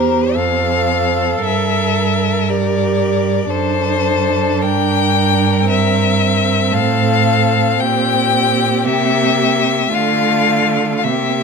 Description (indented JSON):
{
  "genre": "classical, slow romantic movement for string quartet",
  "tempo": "57 BPM (dotted quarters)",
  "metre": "6/8",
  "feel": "uneven beats, rubato",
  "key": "unclear",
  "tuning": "A4 = 440 Hz",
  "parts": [
    { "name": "rich violin", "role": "melody", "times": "0.0-11.4 s", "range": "Bb4 to G5", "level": "-17 LUFS", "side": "left 9 dB", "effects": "none" },
    { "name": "warm violin", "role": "second line", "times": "0.0-11.4 s", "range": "F4 to C5", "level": "-22 LUFS", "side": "left 3 dB", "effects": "none" },
    { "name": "warm viola", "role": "accompaniment", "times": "0.0-11.4 s", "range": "A3 to A4", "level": "-21 LUFS", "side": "right 5 dB", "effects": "none" },
    { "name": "clear cello", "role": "bass", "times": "0.0-11.4 s", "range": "E2 to D3", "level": "-18 LUFS", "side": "right 6 dB", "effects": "none" }
  ],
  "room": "moderate recital hall reverb, RT60 1.4 s",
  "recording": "none",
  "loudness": "-13 LUFS",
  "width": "side -5 dB against mid",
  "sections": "0.0-11.4 A section",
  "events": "none",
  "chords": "0.4 F; 1.4 Gm; 3.5 D7/F#; 4.6 Gm; 5.7 C7/G; 6.7 F/A; 7.8 Gm/Bb; 8.8 C7; 9.9 Dm",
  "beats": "0.35 | 1.45 2.50 | 3.52 4.63 | 5.69 6.71 | 7.79 8.85 | 9.93 11.05"
}